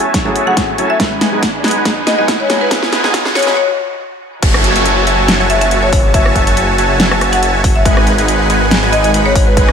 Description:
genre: future bass.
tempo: 140 BPM.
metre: 4/4.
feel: swing 54% on 16ths, half-time.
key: F# dorian.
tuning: A4 = 440 Hz.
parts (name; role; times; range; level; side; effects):
felt-muted upright piano; accompaniment; 0.0-3.6 s; F#3 to A4; -22 LUFS; right 2 dB; sidechain pumping, dub echo.
dense compressed supersaw; riff; 0.0-9.7 s; G#3 to B5; -15 LUFS; equal; sidechain pumping, low-pass filter.
big-room dance drum kit; drums; 0.0-9.7 s; crash cymbal, hi-hat, rim click, snare drum; -17 LUFS; equal; none.
riser and downlifter; sound effects; 0.1-7.9 s; none; -21 LUFS; right 1 dB; none.
electronic kick drum; drums; 0.1-9.7 s; none; -14 LUFS; equal; none.
marimba with hard mallets; melody; 0.5-9.6 s; B4 to F#5; -18 LUFS; left 3 dB; sidechain pumping, ping-pong delay.
wide detuned saw bass; bass; 4.4-9.7 s; F#1 to G#1; -16 LUFS; equal; chorus, sidechain pumping.
room: moderate digital room reverb, RT60 1.0 s.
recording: high-pass filter.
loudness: -10 LUFS.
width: side -7 dB against mid.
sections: 0.0-4.4 A section; 4.4-9.7 B section.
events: build-up 0.0-4.4; drum fill 0.0-3.6; filter sweep on supersaw synth 0.0-4.4; riser 0.1-3.6; break 3.6-4.4; drop 4.4-9.7.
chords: 0.0 F#m7; 1.0 G#m7; 4.2 N.C.; 4.4 F#m7; 7.9 G#m7.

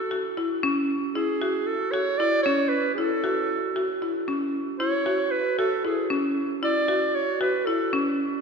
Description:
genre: contemporary instrumental, chamber music in an uneven meter.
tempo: 230 BPM (eighths).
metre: 7/8.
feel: straight.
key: unclear.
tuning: A4 = 444 Hz.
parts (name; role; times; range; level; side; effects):
clear clarinet; melody; 0.0-7.9 s; G#4 to D5; -26 LUFS; right 3 dB; none.
buzzing marimba with hard mallets; arpeggios; 0.1-8.3 s; C#4 to F#4; -25 LUFS; left 1 dB; none.
room: wet church reverb, RT60 3.6 s.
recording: recorded in a church or concert hall.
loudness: -22 LUFS.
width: side -5 dB against mid.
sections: 0.0-8.4 A section.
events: none.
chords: 0.0 A6/C#.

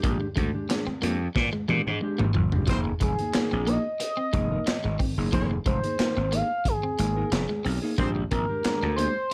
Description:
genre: funk.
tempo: 90 BPM.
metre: 4/4.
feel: straight.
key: F dorian.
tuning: A4 = 442 Hz.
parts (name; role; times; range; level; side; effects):
mellow electric guitar; accompaniment; 0.0-9.2 s; Ab3 to Bb4; -34 LUFS; equal; none.
electric guitar at the edge of break-up; riff; 0.0-9.3 s; F3 to D4; -35 LUFS; equal; none.
gritty slap bass; bass; 0.0-9.1 s; F1 to Bb2; -30 LUFS; equal; overdrive.
crunchy breakbeat drum kit; drums; 0.0-9.3 s; handclaps, hi-hat, kick drum, snare drum, toms; -30 LUFS; equal; none.
clear horn section; second line; 2.7-8.1 s; C4 to C5; -35 LUFS; equal; none.
expressive synth lead; melody; 3.0-9.3 s; Ab4 to F5; -31 LUFS; equal; chorus.
room: light reverb.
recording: none.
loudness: -26 LUFS.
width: mono.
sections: 0.0-2.7 A section; 2.7-9.3 B section.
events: drum fill 1.4-2.7; analog synth lead solo 2.7-9.3.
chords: 0.0 Bb13; 2.7 Fm7; 8.0 Bb13.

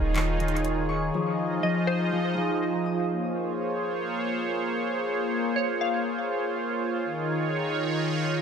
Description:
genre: hip hop, atmospheric cloud-rap.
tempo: 122 BPM.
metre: 4/4.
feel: half-time.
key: Bb minor.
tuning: A4 = 440 Hz.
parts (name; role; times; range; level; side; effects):
sweeping resonant pad; sustained chords; 0.0-8.4 s; Eb3 to Eb5; -26 LUFS; right 1 dB; chorus.
Celtic harp; arpeggios; 0.0-4.0 s; Eb3 to Eb6; -31 LUFS; left 4 dB; dub echo.
soft 808-style bass; bass; 0.0-1.1 s; Eb1; -29 LUFS; equal; none.
wind-like tuned noise texture; texture; 0.0-3.1 s; Eb4 to Ab5; -38 LUFS; right 2 dB; built-in reverb.
smooth R&B drum kit; drums; 0.2-0.8 s; handclaps, hi-hat; -31 LUFS; equal; dub echo.
glassy wavetable pluck; melody; 1.6-2.1, 5.6-6.0 s; C5 to F5; -34 LUFS; equal; chorus, dub echo.
room: light reverb, digital ambience.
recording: echo-heavy mix.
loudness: -25 LUFS.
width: side -7 dB against mid.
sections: 0.0-3.1 A section; 3.1-8.4 B section.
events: none.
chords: 0.0 Eb7sus4; 1.1 Fm7; 3.1 Bbm7; 7.0 Eb7sus4.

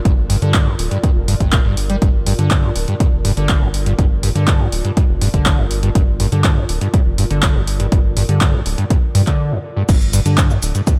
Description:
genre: acid house.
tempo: 122 BPM.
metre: 4/4.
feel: straight.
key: G minor.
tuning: A4 = 440 Hz.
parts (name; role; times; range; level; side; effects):
granular cloud pad; texture; 0.0-9.4 s; F4 to D5; -33 LUFS; equal; built-in reverb, sidechain pumping.
overdriven acid bass; riff; 0.1-10.9 s; F2 to G3; -21 LUFS; equal; tube saturation, lush chorus, sidechain pumping, analog delay.
round analog bass; bass; 0.1-10.7 s; D1 to G2; -22 LUFS; equal; sidechain pumping.
electronic kick drum; drums; 0.1-11.0 s; none; -17 LUFS; equal; none.
punchy analog drum machine; drums; 0.1-11.0 s; crash cymbal, handclaps, hi-hat, shaker; -25 LUFS; equal; none.
room: light reverb.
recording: echo-heavy mix.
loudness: -16 LUFS.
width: mono.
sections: 0.0-9.9 A section; 9.9-11.0 B section.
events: fade-in on ambient pad 0.0-9.9; break 9.4-9.9; drop 9.9-11.0.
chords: 0.0 Gm; 9.9 G5.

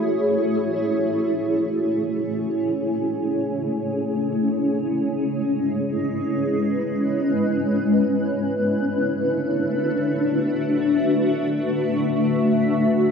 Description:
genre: ambient.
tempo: free time.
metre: none.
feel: none.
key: unclear.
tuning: A4 = 442 Hz.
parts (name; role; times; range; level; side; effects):
granular cloud pad; solo; 0.0-13.1 s; G#3 to E5; -20 LUFS; equal; built-in reverb, ensemble chorus, diffuse ambient delay.
room: wet plate reverb, RT60 2.3 s.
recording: dreamy mix soaked in reverb.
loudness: -20 LUFS.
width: side -6 dB against mid.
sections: 0.7-13.1 A section.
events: none.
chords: 0.0 Amaj7; 4.5 C#m7; 8.4 E9sus4.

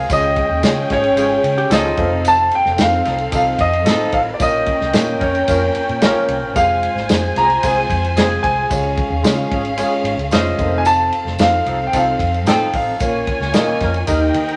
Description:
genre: uptempo 1960s-style soul.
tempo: 112 BPM.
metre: 4/4.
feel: straight.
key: F minor.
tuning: A4 = 440 Hz.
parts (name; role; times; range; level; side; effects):
warm concert grand piano; melody; 0.0-13.5 s; Db5 to Bb5; -20 LUFS; equal; none.
warm horn section; second line; 0.0-14.2 s; F3 to C5; -28 LUFS; equal; none.
warm studio string section; second line; 0.0-14.6 s; C4 to Ab5; -26 LUFS; equal; none.
vintage muted fingered electric bass; bass; 0.0-14.5 s; F1 to Eb3; -26 LUFS; equal; none.
dark upright piano; accompaniment; 0.1-14.4 s; Ab3 to Eb5; -25 LUFS; equal; none.
warm soul drum kit; drums; 0.1-14.6 s; hi-hat, kick drum, ride cymbal, snare drum; -23 LUFS; equal; none.
tambourine; percussion; 0.1-14.2 s; none; -38 LUFS; equal; none.
hollow-body jazz guitar; riff; 1.6-2.1 s; F4 to Ab4; -25 LUFS; equal; none.
room: wet studio reverb, RT60 0.8 s.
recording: none.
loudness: -16 LUFS.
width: mono.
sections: 0.0-14.6 A section.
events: none.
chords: 0.1 Db; 2.0 F7; 4.4 Bbm; 6.6 Fm; 8.7 Db; 10.6 F7; 13.0 Bbm.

